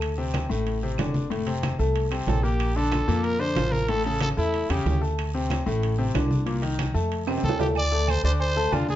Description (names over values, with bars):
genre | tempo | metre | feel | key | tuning
latin, salsa | 186 BPM | 4/4 | straight | unclear | A4 = 440 Hz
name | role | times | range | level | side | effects
bright grand piano | accompaniment | 0.0-9.0 s | A2 to A5 | -27 LUFS | left 3 dB | none
upright bass | bass | 0.0-9.0 s | F1 to F2 | -26 LUFS | right 1 dB | none
claves | percussion | 0.0-8.9 s | none | -41 LUFS | right 6 dB | none
congas | percussion | 0.0-9.0 s | none | -32 LUFS | left 1 dB | none
guiro | percussion | 0.0-9.0 s | none | -45 LUFS | right 6 dB | none
timbales and agogo bells | percussion | 0.0-8.9 s | none | -33 LUFS | right 8 dB | none
growling trumpet | melody | 2.3-5.0, 7.4-9.0 s | E4 to D5 | -27 LUFS | equal | plate reverb
room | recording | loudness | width
moderate studio reverb, RT60 0.6 s | nothing above 7.6 kHz | -22 LUFS | side -13 dB against mid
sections
0.0-7.8 A section; 7.8-9.0 B section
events
drum fill 7.3-7.8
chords
0.0 Dm7; 1.3 F; 2.6 Bbmaj7; 3.9 A7; 5.2 D5; 6.5 Cm7; 7.1 F; 7.8 D5